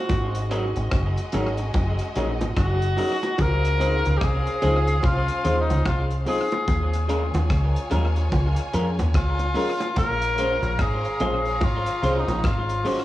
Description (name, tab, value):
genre	lovers rock reggae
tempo	73 BPM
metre	4/4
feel	swing 61% on 16ths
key	Db major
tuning	A4 = 445 Hz
part	warm tenor saxophone	melody	0.0-13.0 s	Eb4 to Bb4	-26 LUFS	left 1 dB	cassette tape, tape echo, plate reverb
part	warm studio violin section	second line	0.0-13.0 s	Ab3 to Bb5	-34 LUFS	equal	cassette tape, plate reverb
part	deep dub fingered electric bass	bass	0.1-12.8 s	Gb1 to F2	-23 LUFS	equal	none
part	damped 70s drum kit	drums	0.1-13.0 s	hi-hat, kick drum, rim click	-27 LUFS	equal	cassette tape, tape echo
part	bongos	percussion	0.1-13.0 s	none	-33 LUFS	right 2 dB	tape echo
part	FM electric piano with soft pad layer	accompaniment	0.5-13.0 s	Db4 to Db5	-30 LUFS	left 2 dB	chorus, cassette tape, plate reverb
part	electric guitar through a small old amp	stabs	0.5-13.0 s	Gb3 to C5	-32 LUFS	right 1 dB	spring reverb, cassette tape, tape echo, plate reverb
room	light reverb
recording	home recording on cassette, studio reverb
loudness	-20 LUFS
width	side -15 dB against mid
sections	0.0-13.0 A section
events	none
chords	0.1 Ab7sus4; 3.4 Dbmaj7; 6.7 Eb9sus4; 10.0 Bbm9